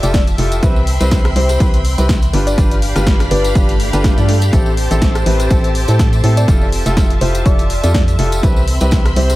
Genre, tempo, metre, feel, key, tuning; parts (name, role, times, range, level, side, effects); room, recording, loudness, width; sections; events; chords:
piano house; 123 BPM; 4/4; swing 55% on 16ths; A4 = 437 Hz
soft struck synth lead; melody; 0.0-8.0 s; B4 to D5; -23 LUFS; left 1 dB; chorus, analog delay
string machine, violins; sustained chords; 0.0-9.4 s; G4 to C6; -25 LUFS; equal; ensemble chorus, sidechain pumping
clear baby grand piano; riff; 0.0-9.4 s; C4 to D5; -21 LUFS; equal; sidechain pumping, analog delay
organ-like FM bass; bass; 0.0-9.4 s; F1 to A2; -15 LUFS; equal; sidechain pumping
punchy analog drum machine; drums; 0.0-9.4 s; hi-hat, rim click, snare drum; -23 LUFS; left 1 dB; overdrive, analog delay
tambourine; percussion; 0.0-9.4 s; -31 LUFS; left 1 dB
muted studio string section; texture; 0.0-9.4 s; C4 to G5; -27 LUFS; left 1 dB; sidechain pumping
electronic kick drum; drums; 0.1-9.0 s; -14 LUFS; equal; overdrive
swell; sound effects; 3.7-4.5 s; -25 LUFS; equal
little or no reverb; echo-heavy mix; -11 LUFS; side -17 dB against mid
0.0-9.4 A section
swell 3.7-4.5
0.0 Fmaj9; 0.6 Cmaj7; 2.3 G7; 4.5 Am7; 6.5 Fmaj9; 8.4 Cmaj7